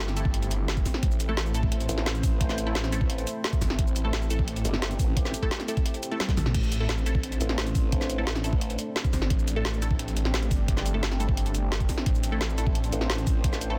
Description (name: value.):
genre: dark technical drum and bass.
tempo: 174 BPM.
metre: 4/4.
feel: straight.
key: A minor.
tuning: A4 = 441 Hz.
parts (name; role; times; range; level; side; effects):
dark analog pad; sustained chords; 0.0-13.8 s; A3 to C5; -38 LUFS; equal; chorus, sidechain pumping.
filtered dub chord stab; stabs; 0.0-13.8 s; A3 to A4; -38 LUFS; equal; phaser, delay.
snarling distorted saw bass; bass; 0.0-12.9 s; G1 to A1; -30 LUFS; equal; distortion, overdrive.
drum and bass drum kit; drums; 0.1-13.7 s; crash cymbal, hi-hat, shaker, snare drum, toms; -33 LUFS; equal; none.
electronic kick drum; drums; 0.3-13.5 s; none; -28 LUFS; equal; overdrive.
formant-sweep wobble bass; bass; 1.9-5.3, 7.4-8.8, 12.9-13.8 s; G1 to A1; -32 LUFS; equal; chorus.
room: little or no reverb.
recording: dense, heavily limited modern master.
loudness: -27 LUFS.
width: mono.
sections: 0.0-13.8 A section.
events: drum fill 6.2-6.5.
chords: 0.0 Am.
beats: 0.34 0.68 | 1.03 1.37 1.72 2.06 | 2.41 2.75 3.10 3.44 | 3.79 4.13 4.48 4.82 | 5.17 5.51 5.86 6.20 | 6.54 6.89 7.24 7.58 | 7.92 8.27 8.61 8.96 | 9.30 9.65 9.99 10.34 | 10.68 11.03 11.37 11.72 | 12.06 12.41 12.75 13.10 | 13.44.